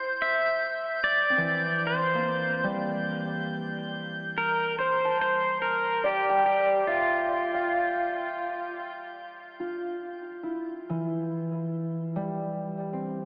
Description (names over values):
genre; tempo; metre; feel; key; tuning
ambient; 72 BPM; 3/4; straight; unclear; A4 = 439 Hz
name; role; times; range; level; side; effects
pedal steel guitar; melody; 0.0-8.9 s; F4 to E5; -29 LUFS; equal; shimmer reverb, diffuse ambient delay
concert harp; arpeggios; 0.0-13.3 s; E3 to A5; -32 LUFS; equal; shimmer reverb, diffuse ambient delay
drifting glass-harmonics texture; texture; 0.0-9.4 s; G6; -38 LUFS; equal; chorus, built-in reverb, shimmer reverb
room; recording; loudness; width
wet lush hall reverb, RT60 3.1 s; AM radio sound; -28 LUFS; mono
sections
0.0-9.4 A section; 9.4-13.3 B section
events
none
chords
0.0 Bbadd9; 9.4 Fmaj7(no3)